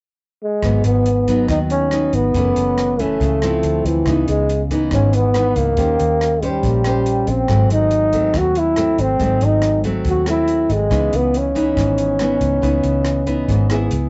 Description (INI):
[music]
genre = bossa nova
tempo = 140 BPM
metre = 4/4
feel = straight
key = C# minor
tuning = A4 = 440 Hz
[part]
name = breathy trombone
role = melody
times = 0.4-13.9 s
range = E3 to F#4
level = -20 LUFS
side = equal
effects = cassette tape
[part]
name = nylon-string guitar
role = accompaniment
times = 0.6-14.1 s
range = F#2 to B#4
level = -22 LUFS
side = equal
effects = cassette tape
[part]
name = vintage muted fingered electric bass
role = bass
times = 0.6-14.1 s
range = F#1 to D#2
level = -24 LUFS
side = equal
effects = none
[part]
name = open jazz drum kit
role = drums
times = 0.6-14.0 s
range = hi-hat, kick drum, rim click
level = -30 LUFS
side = equal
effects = cassette tape
[sound]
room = moderate small room ambience, RT60 0.5 s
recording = home recording on cassette, nothing above 7.9 kHz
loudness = -17 LUFS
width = mono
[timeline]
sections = 0.6-14.1 A section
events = none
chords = 0.0 N.C.; 0.6 G#m7; 2.3 F#m7; 3.6 Dm9; 4.1 C#m9; 5.8 D#6; 7.5 G#7b9; 10.9 C#m9